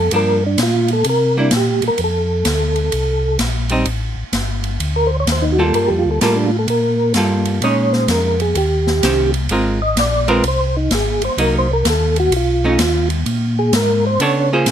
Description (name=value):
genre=soul jazz organ trio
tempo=128 BPM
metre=4/4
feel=swing 66% on 8ths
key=F mixolydian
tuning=A4 = 440 Hz
part: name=percussive tonewheel organ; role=melody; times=0.0-14.7 s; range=D4 to Eb5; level=-17 LUFS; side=right 1 dB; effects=slow rotary speaker, chorus vibrato
part: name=mellow tonewheel organ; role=bass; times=0.0-14.7 s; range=G1 to Db3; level=-19 LUFS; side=left 1 dB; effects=chorus vibrato, slow rotary speaker
part: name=archtop guitar, miked and amplified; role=accompaniment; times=0.1-14.7 s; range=Eb3 to Db5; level=-18 LUFS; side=right 2 dB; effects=none
part: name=swinging big-band drum kit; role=drums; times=0.1-14.7 s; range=hi-hat, ride cymbal, snare drum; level=-22 LUFS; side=equal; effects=none
room=little or no reverb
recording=close, detailed microphones, faint mains hum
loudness=-14 LUFS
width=side -9 dB against mid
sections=0.0-2.0 A section; 2.0-14.7 A section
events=tonewheel organ solo 0.0-14.7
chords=0.1 Gm7; 1.1 C7; 2.0 F6; 3.9 Gsus2; 4.8 D5; 5.7 Gm9; 7.6 Bbm7; 8.6 Eb6; 9.5 Ab69; 11.4 Cm7b5; 12.3 B9; 13.3 Bbm7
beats=| 0.12 0.58 1.05 1.52 | 1.99 2.46 2.92 3.39 | 3.86 4.33 4.80 5.27 | 5.74 6.21 6.68 7.15 | 7.62 8.09 8.56 9.03 | 9.50 9.97 10.44 10.91 | 11.38 11.86 12.33 12.80 | 13.27 13.74 14.21 14.68